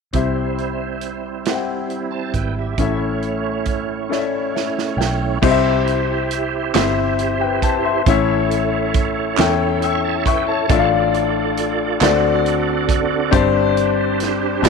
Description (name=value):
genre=slow gospel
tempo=46 BPM (dotted quarters)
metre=6/8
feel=straight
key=C major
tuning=A4 = 440 Hz
part: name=clear concert grand piano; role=accompaniment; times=0.1-14.7 s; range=G2 to E6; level=-19 LUFS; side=left 11 dB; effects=none
part: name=bright tonewheel organ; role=sustained chords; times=0.1-14.7 s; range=G3 to C#6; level=-23 LUFS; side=right 15 dB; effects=slow rotary speaker, chorus vibrato
part: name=fingered electric bass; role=bass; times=0.1-14.7 s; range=G1 to E2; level=-24 LUFS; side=right 2 dB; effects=none
part: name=natural country drum kit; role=drums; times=0.1-14.7 s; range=crash cymbal, hi-hat, kick drum, snare drum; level=-21 LUFS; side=right 5 dB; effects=none
part: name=group handclap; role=percussion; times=6.7-14.7 s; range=none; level=-24 LUFS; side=right 16 dB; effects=none
room=light reverb, studio reverb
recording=1960s-style stereo with parts hard left and right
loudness=-16 LUFS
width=side -5 dB against mid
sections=0.1-5.4 A section; 5.4-14.7 B section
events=drum fill 4.1-5.4; grand piano fill 4.1-5.4; tonewheel organ fill 9.4-10.7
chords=0.1 C; 2.8 A; 5.4 C; 8.1 A; 10.7 Dm/A; 12.0 D7; 13.3 Gsus4